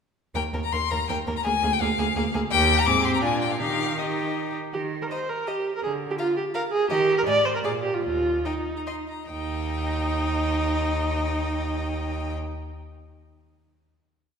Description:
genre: quick classical-period movement for string quartet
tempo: 138-171 BPM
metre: 3/4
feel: rubato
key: Eb major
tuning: A4 = 440 Hz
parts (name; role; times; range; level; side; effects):
- rich violin; melody; 0.3-12.3 s; Eb5 to D6; -27 LUFS; left 7 dB; none
- rich violin; second line; 0.4-12.3 s; F4 to F5; -33 LUFS; left 3 dB; none
- warm viola; accompaniment; 0.4-12.3 s; Bb3 to D5; -26 LUFS; right 2 dB; none
- rich cello; bass; 0.4-12.3 s; D2 to Eb3; -29 LUFS; right 2 dB; none
room: wet scoring stage reverb, RT60 2.0 s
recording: recorded in a church or concert hall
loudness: -23 LUFS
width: side -6 dB against mid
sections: 0.4-4.7 A section; 4.7-9.3 A section; 9.3-11.9 final chord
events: slowing down 6.4-9.3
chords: 0.4 Eb5; 1.4 Bb7/D; 2.5 Eb; 2.9 Ab; 3.2 Bb7; 3.6 Eb; 4.7 Eb5; 5.8 Bb/D (rootless); 6.9 Eb; 7.3 Ab5; 7.6 Bb; 8.0 N.C.; 9.3 Eb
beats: | 0.35 0.72 1.09 | 1.45 1.81 2.16 | 2.51 2.87 3.23 | 3.60 3.98 4.36 | 4.74 5.11 5.48 | 5.84 6.19 6.55 | 6.90 7.27 7.64 | 8.04 8.45 8.87 | 9.29 9.72 10.15 | 10.58 11.01 11.44

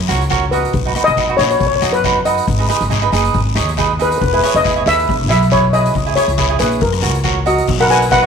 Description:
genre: calypso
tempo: 138 BPM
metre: 4/4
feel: swing 54% on 16ths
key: B major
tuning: A4 = 440 Hz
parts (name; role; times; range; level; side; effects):
- upright bass; bass; 0.0-8.3 s; E1 to F#2; -18 LUFS; equal; none
- cavaquinho; accompaniment; 0.1-8.3 s; D#4 to D#5; -18 LUFS; right 9 dB; none
- street-band drum kit; drums; 0.1-8.2 s; crash cymbal, hi-hat, kick drum, rim click; -22 LUFS; left 4 dB; none
- guiro; percussion; 0.1-8.2 s; none; -25 LUFS; left 14 dB; none
- steel pan; melody; 0.5-8.3 s; F#4 to G#5; -16 LUFS; left 3 dB; none
room: light reverb, small room ambience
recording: 1960s-style stereo with parts hard left and right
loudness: -12 LUFS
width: side -6 dB against mid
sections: 0.0-7.7 A section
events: none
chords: 0.0 F#; 0.7 B; 2.5 G#m; 4.2 Emaj7; 5.9 C#m; 6.8 F#; 7.7 B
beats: 0.30 | 0.73 1.17 1.60 2.04 | 2.47 2.91 3.34 3.77 | 4.21 4.64 5.08 5.51 | 5.95 6.38 6.81 7.25 | 7.68 8.11

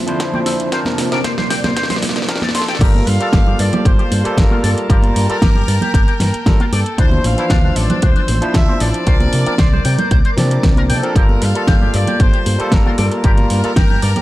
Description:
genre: nu-disco, nu disco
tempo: 115 BPM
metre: 4/4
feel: straight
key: G dorian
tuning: A4 = 441 Hz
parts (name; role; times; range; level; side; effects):
- overdriven tine electric piano; accompaniment; 0.0-13.7 s; E3 to D5; -22 LUFS; equal; vintage 12-bit sampler grit
- string machine, full ensemble; sustained chords; 0.0-14.2 s; C3 to E6; -28 LUFS; equal; ensemble chorus, sidechain pumping
- pop drum kit; drums; 0.1-14.2 s; crash cymbal, hi-hat, snare drum; -21 LUFS; equal; high-pass filter on snare, small room reverb, high-pass filter on hats, high-pass filter on cymbals
- electronic kick drum; drums; 0.2-13.9 s; none; -14 LUFS; equal; high-pass filter on kick, small room reverb
- electric guitar with an envelope filter; riff; 0.3-14.2 s; C4 to C6; -25 LUFS; left 2 dB; wide subtle chorus, vintage 12-bit sampler grit
- congas; percussion; 0.3-14.2 s; none; -24 LUFS; right 2 dB; none
- bright trumpet section; melody; 2.5-14.2 s; A4 to F5; -24 LUFS; equal; analog delay
- fingered electric bass with an envelope filter; bass; 2.8-14.1 s; G1 to C3; -17 LUFS; equal; none
room: little or no reverb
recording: dry, gritty hardware recording, transformer saturation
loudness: -12 LUFS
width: side -16 dB against mid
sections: 0.0-2.8 A section; 2.8-14.2 B section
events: build-up 0.0-2.8; drum fill 0.0-2.8; filter sweep on string machine 0.0-2.8; drop 2.8-14.2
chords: 0.0 Dm9; 0.7 C9sus4; 2.8 Gm9; 7.0 Dm9; 9.1 C9sus4; 11.2 Gm9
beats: 0.20 | 0.72 1.24 1.77 2.29 | 2.81 3.33 3.85 4.37 | 4.90 5.42 5.94 6.46 | 6.98 7.50 8.03 8.55 | 9.07 9.59 10.11 10.63 | 11.16 11.68 12.20 12.72 | 13.24 13.77

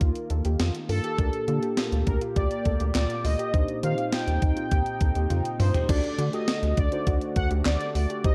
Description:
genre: synth-pop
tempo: 102 BPM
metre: 4/4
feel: straight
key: unclear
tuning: A4 = 439 Hz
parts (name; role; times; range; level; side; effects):
- sweeping resonant pad; sustained chords; 0.0-8.3 s; Bb2 to G4; -36 LUFS; equal; chorus
- soft round pluck; arpeggios; 0.0-8.3 s; D4 to A4; -38 LUFS; equal; chorus, tape echo
- rubbery square bass; bass; 0.0-8.3 s; C2 to Eb3; -28 LUFS; equal; none
- gated 80s digital drum machine; drums; 0.0-8.3 s; crash cymbal, handclaps, hi-hat, kick drum, snare drum, toms; -29 LUFS; equal; gated reverb, gated reverb snare
- analog synth brass; melody; 0.9-8.3 s; A4 to G5; -33 LUFS; equal; chorus
- muted felt-like synth keys; accompaniment; 1.2-8.3 s; D3 to C5; -36 LUFS; equal; chorus
room: light reverb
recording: dark, warm production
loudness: -26 LUFS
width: mono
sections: 0.0-5.9 A section; 5.9-8.3 B section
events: drum fill 5.3-5.9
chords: 0.0 Ebsus2; 1.2 Gm/D; 3.5 Cmadd9/Eb; 5.9 D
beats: 0.01 0.60 | 1.19 1.77 2.36 2.95 | 3.54 4.13 4.71 5.30 | 5.89 6.48 7.07 7.66 | 8.24

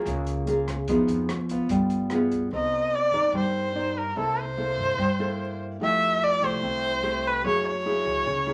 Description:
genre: bossa nova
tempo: 146 BPM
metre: 4/4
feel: straight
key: unclear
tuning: A4 = 438 Hz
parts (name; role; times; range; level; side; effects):
- nylon-string guitar; accompaniment; 0.0-8.5 s; C3 to D5; -29 LUFS; equal; none
- upright bass; bass; 0.1-8.5 s; C2 to G2; -39 LUFS; equal; none
- open jazz drum kit; drums; 0.1-2.4 s; hi-hat, kick drum, rim click; -39 LUFS; equal; none
- rich erhu; melody; 2.5-8.5 s; A4 to E5; -27 LUFS; equal; none
room: wet club reverb, RT60 0.6 s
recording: vinyl crackle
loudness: -25 LUFS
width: mono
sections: 0.0-2.5 A section; 2.5-8.5 B section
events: none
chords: 0.0 Gbmaj9 (rootless); 0.9 Fm7b5; 1.7 G7b9; 2.5 Cm9; 4.2 C6; 5.8 Fmaj9; 7.4 F#9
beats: 0.06 0.47 | 0.88 1.29 1.70 2.11 | 2.52 2.93 3.34 3.75 | 4.16 4.57 4.98 5.39 | 5.80 6.21 6.62 7.04 | 7.45 7.86 8.27

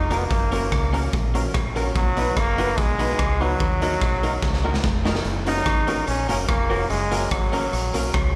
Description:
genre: ska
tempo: 146 BPM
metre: 4/4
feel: straight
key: unclear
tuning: A4 = 437 Hz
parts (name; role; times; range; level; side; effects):
- brilliant trombone; melody; 0.0-8.4 s; F#3 to Eb4; -28 LUFS; equal; tape echo
- deep dub fingered electric bass; bass; 0.0-8.3 s; F1 to Eb2; -28 LUFS; equal; none
- clean electric guitar; accompaniment; 0.1-8.0 s; Bb3 to B4; -32 LUFS; equal; subtle chorus, plate reverb, slapback echo
- warm upright piano; stabs; 0.1-8.1 s; Db4 to B4; -34 LUFS; equal; slapback echo
- raw garage drum kit; drums; 0.1-8.2 s; hi-hat, kick drum, rim click, snare drum; -27 LUFS; equal; tape echo
room: light reverb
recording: live gig heard through the venue's PA, club reverb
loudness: -22 LUFS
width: mono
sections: 0.0-5.2 A section; 5.2-8.4 B section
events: drum fill 4.4-5.2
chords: 0.3 Gb; 2.0 B; 3.6 Ebm; 5.2 Gb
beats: | 0.31 0.72 1.13 1.54 | 1.96 2.37 2.78 3.19 | 3.60 4.01 4.43 4.84 | 5.25 5.66 6.07 6.49 | 6.90 7.31 7.72 8.14

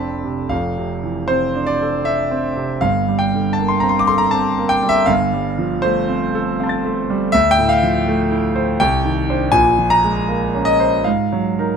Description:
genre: classical, impressionist solo piano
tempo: 80 BPM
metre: 3/4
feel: uneven beats, rubato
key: F major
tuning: A4 = 440 Hz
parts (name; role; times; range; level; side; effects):
- clear concert grand piano; solo; 0.0-11.8 s; F1 to A6; -15 LUFS; equal; none
room: moderate stone room reverb, RT60 1.3 s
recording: close, detailed microphones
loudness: -15 LUFS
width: side -6 dB against mid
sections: 0.0-11.8 A section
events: none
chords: 0.0 F69; 0.5 Dm9/F; 2.8 Gmadd9; 5.1 Fadd9/G; 7.3 Dm9; 8.8 Cmadd9; 9.5 Bbm9; 11.0 Absus2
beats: | 0.51 1.30 2.06 | 2.82 3.58 4.33 | 5.08 5.84 6.59 | 7.33 8.06 8.80 | 9.52 10.28 11.05

